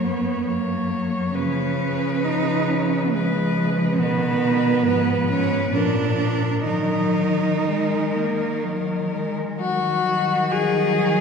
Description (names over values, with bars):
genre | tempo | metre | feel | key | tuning
classical, lyrical piece for cello ensemble | 61-70 BPM | 3/4 | rubato | Eb minor from 4.0 s | A4 = 436 Hz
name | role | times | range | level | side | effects
rich cello | melody | 0.0-11.2 s | Gb4 to C#5 | -25 LUFS | left 3 dB | none
rich cello | second line | 0.0-11.2 s | G#3 to Gb4 | -24 LUFS | right 4 dB | none
rich cello | accompaniment | 0.0-11.2 s | D#3 to Bb3 | -25 LUFS | left 3 dB | none
rich cello | bass | 0.0-11.2 s | F#2 to Eb3 | -27 LUFS | equal | none
room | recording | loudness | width
wet church reverb, RT60 2.5 s | minimal, uncompressed stereo recording | -19 LUFS | side -6 dB against mid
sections
0.0-9.6 A section; 9.6-11.2 B section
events
none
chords
0.0 F#; 1.4 C#7; 4.0 B; 4.8 Fdim/Ab; 5.7 Bb; 6.7 Ebm